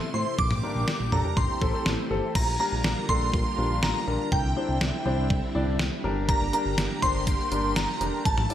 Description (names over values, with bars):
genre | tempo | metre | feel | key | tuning
synth-pop | 122 BPM | 4/4 | straight | unclear | A4 = 440 Hz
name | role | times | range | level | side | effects
shimmering bell with halo | melody | 0.0-8.5 s | G5 to D6 | -29 LUFS | right 1 dB | ensemble chorus, digital delay
string machine, violins | sustained chords | 0.0-8.5 s | C3 to G4 | -33 LUFS | right 1 dB | ensemble chorus
warm concert grand piano | accompaniment | 0.1-8.5 s | C4 to D5 | -32 LUFS | left 3 dB | analog chorus
smooth synth bass | bass | 0.1-8.5 s | F1 to A2 | -30 LUFS | equal | none
detuned 8-bit digital drum machine | drums | 0.4-8.5 s | crash cymbal, hi-hat, kick drum, snare drum, toms | -28 LUFS | equal | gated reverb
room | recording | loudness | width
moderate plate reverb, RT60 1.8 s, digital ambience | bright 1980s-style digital production | -23 LUFS | side -11 dB against mid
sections
0.0-2.4 A section; 2.4-8.5 B section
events
none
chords
0.4 Gm/Bb; 1.4 Am7; 2.4 Bb6; 4.3 Cadd9; 6.0 Gm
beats
| 0.39 0.88 1.37 1.86 | 2.35 2.84 3.34 3.83 | 4.32 4.81 5.30 5.79 | 6.29 6.78 7.27 7.76 | 8.25